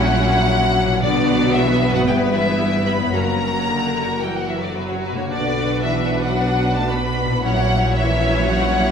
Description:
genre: classical, dramatic, fast romantic movement for symphony orchestra.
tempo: 112 BPM.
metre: 4/4.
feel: straight.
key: B minor.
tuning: A4 = 443 Hz.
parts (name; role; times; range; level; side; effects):
clear studio violin section; melody; 0.0-8.9 s; B4 to B5; -22 LUFS; left 2 dB; none.
rich symphonic violin section; second line; 0.0-8.9 s; E4 to C#5; -24 LUFS; left 1 dB; none.
clear symphonic viola section; accompaniment; 0.0-8.9 s; D3 to D4; -26 LUFS; right 2 dB; none.
dark French horn section; sustained chords; 0.0-8.9 s; B2 to B3; -24 LUFS; left 3 dB; none.
concert harp; arpeggios; 0.0-8.9 s; F#2 to C#5; -27 LUFS; left 4 dB; none.
rich symphonic cello section; bass; 0.0-8.9 s; F#2 to B2; -24 LUFS; right 3 dB; none.
rich symphonic double bass section; bass; 0.0-8.9 s; F#1 to B1; -26 LUFS; right 3 dB; none.
timpani; percussion; 1.0-1.8 s; B2; -30 LUFS; right 2 dB; none.
room: moderate concert hall reverb, RT60 2.1 s.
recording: minimal, uncompressed stereo recording.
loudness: -16 LUFS.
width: side -7 dB against mid.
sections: 0.0-8.9 A section.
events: none.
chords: 0.0 F#7/A#; 1.0 Bm; 2.1 Em/G; 3.1 F#; 5.3 Bm; 7.4 F#7/A#.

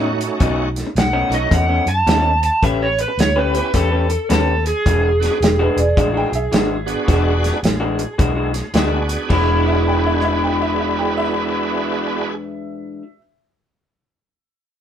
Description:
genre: electric blues shuffle.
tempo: 108 BPM.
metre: 4/4.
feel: swing 64% on 8ths.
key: E mixolydian.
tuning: A4 = 444 Hz.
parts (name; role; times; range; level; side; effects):
clear upright piano; second line; 0.0-0.8, 5.4-13.2 s; F#3 to G5; -25 LUFS; right 2 dB; none.
bright tonewheel organ; accompaniment; 0.0-12.4 s; A3 to G#4; -22 LUFS; right 4 dB; slow rotary speaker, overdrive, chorus vibrato.
electric guitar through a small old amp; riff; 0.0-13.0 s; B2 to B4; -22 LUFS; left 3 dB; none.
vintage muted fingered electric bass; bass; 0.0-13.0 s; E1 to A2; -21 LUFS; equal; none.
warm soul drum kit; drums; 0.2-10.3 s; crash cymbal, hi-hat, kick drum, rim click, snare drum; -20 LUFS; equal; none.
overdriven slide guitar; melody; 1.0-12.3 s; E4 to A5; -20 LUFS; right 1 dB; none.
room: light reverb.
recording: band playing live in one room.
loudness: -15 LUFS.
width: side -9 dB against mid.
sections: 0.0-9.3 A section; 9.3-11.5 B section.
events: none.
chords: 0.0 B9; 2.6 A9; 4.9 E9.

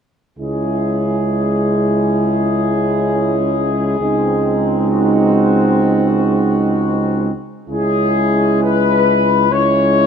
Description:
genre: classical, hymn-like piece for brass band.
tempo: 59-70 BPM.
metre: 4/4.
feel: rubato.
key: C# minor.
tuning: A4 = 439 Hz.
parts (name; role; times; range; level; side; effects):
dark trumpet section; melody; 0.4-10.1 s; F#4 to C#5; -19 LUFS; left 5 dB; none.
mellow French horn section; second line; 0.4-10.1 s; D#4 to E4; -20 LUFS; right 6 dB; none.
bright trombone section; accompaniment; 0.4-10.1 s; B#3 to C#4; -23 LUFS; left 3 dB; none.
warm trombone; accompaniment; 0.4-10.1 s; G#3; -20 LUFS; right 2 dB; none.
warm tuba; bass; 0.4-10.1 s; C#2; -19 LUFS; equal; none.
room: light reverb.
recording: close, detailed microphones.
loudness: -13 LUFS.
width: side -7 dB against mid.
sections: 0.4-7.7 A section; 7.7-10.1 B section.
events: none.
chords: 0.4 C#m; 4.0 G#7/C#; 7.7 C#m.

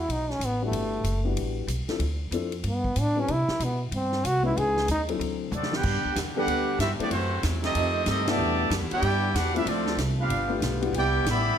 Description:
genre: jazz, big band swing.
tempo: 188 BPM.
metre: 4/4.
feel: swing 64% on 8ths.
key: unclear.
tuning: A4 = 440 Hz.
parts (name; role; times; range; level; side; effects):
clear trombone; melody; 0.0-5.0 s; A3 to G#4; -27 LUFS; equal; none.
upright bass; bass; 0.0-11.6 s; F#1 to C3; -29 LUFS; equal; none.
swinging big-band drum kit; drums; 0.1-11.4 s; crash cymbal, hi-hat, kick drum, ride cymbal, snare drum, toms; -34 LUFS; equal; none.
dark upright piano; accompaniment; 0.6-10.9 s; E#3 to F#5; -31 LUFS; left 6 dB; none.
clear trumpet section; melody; 5.5-11.6 s; A3 to B5; -28 LUFS; equal; none.
warm trombone section; second line; 5.5-11.6 s; B2 to G4; -31 LUFS; right 4 dB; none.
edgy saxophone section; sustained chords; 5.9-11.6 s; C3 to G4; -37 LUFS; left 1 dB; none.
room: moderate large studio reverb, RT60 1.2 s.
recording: none.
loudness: -24 LUFS.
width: side -9 dB against mid.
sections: 0.0-5.8 A section; 5.8-11.6 B section.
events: trombone solo 0.0-5.8; drum fill 5.5-5.8; band accent 8.2.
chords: 0.1 B5; 0.7 Em9; 2.0 Dm7; 2.6 Gadd9; 3.3 Cmaj7; 4.6 C#m9; 5.2 D9; 7.1 F#m7b5; 7.8 F9; 8.4 Em7; 9.7 Dm7; 10.3 G7; 10.9 Cmaj9.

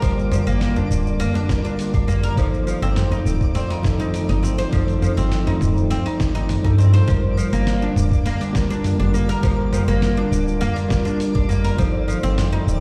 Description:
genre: organic downtempo.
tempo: 102 BPM.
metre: 4/4.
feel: straight.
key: G minor.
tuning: A4 = 443 Hz.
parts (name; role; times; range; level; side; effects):
bell-like tine electric piano; accompaniment; 0.0-12.8 s; F3 to Bb4; -28 LUFS; equal; sidechain pumping, delay.
warbly tape-like pad; sustained chords; 0.0-12.8 s; D3 to F4; -32 LUFS; equal; chorus, built-in reverb, sidechain pumping.
oud; arpeggios; 0.0-12.8 s; F3 to C5; -28 LUFS; equal; delay.
woody FM bass; bass; 0.0-12.8 s; D1 to G2; -23 LUFS; equal; sidechain pumping.
dusty soul sampler-style drum kit; drums; 0.0-12.8 s; hi-hat, shaker, snare drum, toms; -28 LUFS; equal; none.
electronic kick drum; drums; 0.0-11.9 s; none; -23 LUFS; equal; none.
twinkling granular texture; texture; 0.0-12.8 s; D5; -40 LUFS; equal; built-in reverb.
djembe; percussion; 0.3-6.9 s; none; -29 LUFS; equal; none.
room: light reverb.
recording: played on a big sound system in a bare room, large studio reverb.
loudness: -20 LUFS.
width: mono.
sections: 0.0-7.1 A section; 7.1-12.8 B section.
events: none.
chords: 0.0 Gm7; 2.4 F7; 7.1 Gm7; 11.8 F7.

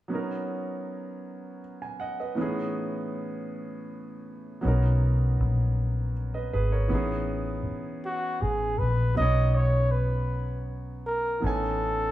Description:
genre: R&B.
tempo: 53 BPM (dotted quarters).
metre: 6/8.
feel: straight.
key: B major.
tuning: A4 = 441 Hz.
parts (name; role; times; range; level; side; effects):
warm concert grand piano; accompaniment; 0.1-12.1 s; A2 to G#5; -32 LUFS; right 2 dB; none.
vintage muted fingered electric bass; bass; 4.7-12.1 s; G#1 to B1; -25 LUFS; equal; none.
breathy flugelhorn; melody; 8.1-12.1 s; F#4 to D#5; -28 LUFS; equal; none.
room: wet large studio reverb, RT60 0.9 s.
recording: band playing live in one room.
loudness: -25 LUFS.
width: side -14 dB against mid.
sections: 0.1-9.2 A section; 9.2-12.1 B section.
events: none.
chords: 0.1 Bmaj9; 2.4 Amaj9#11; 4.6 Bmaj9; 6.9 Amaj9#11; 9.2 Badd9; 11.4 Amaj9#11.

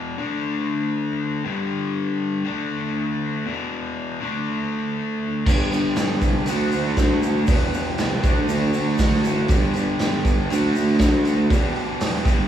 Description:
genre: classic rock.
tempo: 119 BPM.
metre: 4/4.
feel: straight.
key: unclear.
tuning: A4 = 440 Hz.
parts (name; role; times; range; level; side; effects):
distorted electric guitar; riff; 0.0-12.5 s; E2 to D4; -24 LUFS; left 3 dB; distortion.
raw garage guitar; riff; 5.5-12.5 s; E2 to G4; -24 LUFS; right 6 dB; overdrive.
warm tuba; bass; 5.5-12.5 s; E1 to D2; -26 LUFS; equal; none.
raw garage drum kit; drums; 5.5-12.4 s; crash cymbal, hi-hat, kick drum, snare drum; -22 LUFS; right 1 dB; none.
tube shaker; percussion; 5.5-12.4 s; none; -43 LUFS; right 8 dB; none.
room: light reverb.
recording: band playing live in one room, small room reverb.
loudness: -19 LUFS.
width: side -10 dB against mid.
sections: 0.0-12.5 A section.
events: none.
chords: 0.2 D5; 1.4 G5; 2.5 D5; 3.5 E5; 4.2 D5; 5.5 G; 6.5 D; 7.5 Em; 8.2 D; 9.5 G; 10.5 D; 11.5 Em.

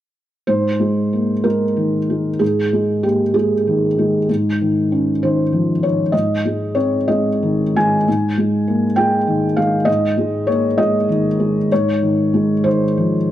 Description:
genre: neoclassical minimalist piano.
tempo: 59-67 BPM (dotted quarters).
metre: 6/8.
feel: rubato.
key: Ab major.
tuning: A4 = 441 Hz.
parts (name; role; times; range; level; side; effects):
felt-muted upright piano; solo; 0.5-13.3 s; Ab2 to Ab5; -15 LUFS; equal; none.
room: little or no reverb.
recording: dry, close 1970s-style studio recording.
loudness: -15 LUFS.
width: side -12 dB against mid.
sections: 0.5-13.3 A section.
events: none.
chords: 0.5 Absus2; 4.3 Dbadd9/Ab; 6.1 Cm/Ab; 8.1 Absus2; 11.7 Dbadd9/Ab.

